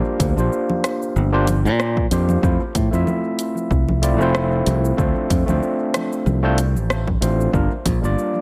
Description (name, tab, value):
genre	sunset chillout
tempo	94 BPM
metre	4/4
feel	swing 56% on 16ths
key	D minor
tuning	A4 = 441 Hz
part	overdriven tine electric piano	accompaniment	0.0-8.4 s	G3 to E5	-24 LUFS	equal	analog delay
part	fingered electric bass	bass	0.2-8.1 s	F1 to Bb2	-21 LUFS	equal	none
part	deep house drum kit	drums	0.2-8.3 s	congas, hi-hat, rim click, shaker	-28 LUFS	equal	overdrive, analog delay
part	electronic kick drum	drums	0.2-8.0 s	none	-25 LUFS	equal	overdrive
room	light reverb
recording	echo-heavy mix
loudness	-19 LUFS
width	mono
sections	0.0-8.4 A section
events	none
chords	0.0 Bb69; 2.4 Fmaj7; 5.0 Dm7; 7.5 Gm7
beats	0.52 1.16 1.79 | 2.43 3.07 3.71 4.35 | 4.99 5.62 6.26 6.90 | 7.54 8.18